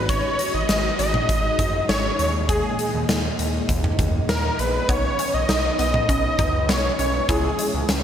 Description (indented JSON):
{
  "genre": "synth-pop",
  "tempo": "100 BPM",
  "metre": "4/4",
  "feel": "straight",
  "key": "G# minor",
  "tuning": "A4 = 444 Hz",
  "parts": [
    { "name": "wide unison lead", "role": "melody", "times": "0.0-7.9 s", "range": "G#4 to D#5", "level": "-23 LUFS", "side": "equal", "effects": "digital delay" },
    { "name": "ensemble organ-string", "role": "sustained chords", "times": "0.0-8.0 s", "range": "A#2 to A#5", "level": "-29 LUFS", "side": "equal", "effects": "phaser, ensemble chorus" },
    { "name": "smooth synth bass", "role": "bass", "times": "0.0-8.0 s", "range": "G#1 to D#2", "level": "-26 LUFS", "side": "equal", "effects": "none" },
    { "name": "huge arena drum kit", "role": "drums", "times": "0.1-8.0 s", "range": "hi-hat, kick drum, snare drum, toms", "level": "-24 LUFS", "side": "equal", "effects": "gated reverb" },
    { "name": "resonant blip pluck", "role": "arpeggios", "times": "4.9-8.0 s", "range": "G#3 to E4", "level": "-30 LUFS", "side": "left 2 dB", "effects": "chorus, digital delay" }
  ],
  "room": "moderate lush hall reverb, RT60 2.2 s",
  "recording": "bright 1980s-style digital production",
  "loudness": "-19 LUFS",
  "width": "side -9 dB against mid",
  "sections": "0.0-8.0 A section",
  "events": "none",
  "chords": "0.0 G#m7; 2.2 D#sus4; 4.9 Badd9; 7.3 C#m"
}